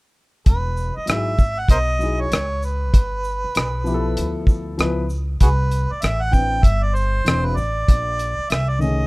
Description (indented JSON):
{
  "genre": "hip hop, jazz-hop",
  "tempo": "97 BPM",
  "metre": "4/4",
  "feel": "swing 62% on 16ths",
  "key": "unclear",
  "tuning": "A4 = 442 Hz",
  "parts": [
    { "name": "mellow harmonica", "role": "melody", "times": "0.5-9.1 s", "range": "F#4 to G5", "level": "-24 LUFS", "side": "right 1 dB", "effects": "none" },
    { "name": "upright bass", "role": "bass", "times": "0.5-9.1 s", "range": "E1 to D2", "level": "-22 LUFS", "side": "equal", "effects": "none" },
    { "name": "cloth-damped thuddy drum kit", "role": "drums", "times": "0.5-9.0 s", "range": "hi-hat, kick drum, rim click, shaker", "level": "-16 LUFS", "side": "equal", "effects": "none" },
    { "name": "dark concert grand piano", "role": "accompaniment", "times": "1.1-9.1 s", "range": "D#3 to C5", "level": "-24 LUFS", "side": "left 2 dB", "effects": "none" }
  ],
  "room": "studio reverb",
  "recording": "rough home demo mix",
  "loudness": "-17 LUFS",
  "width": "side -24 dB against mid",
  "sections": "0.5-9.1 A section",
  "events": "none",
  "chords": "0.5 Emaj9; 2.9 G13; 5.4 Cmaj9; 7.9 A#9"
}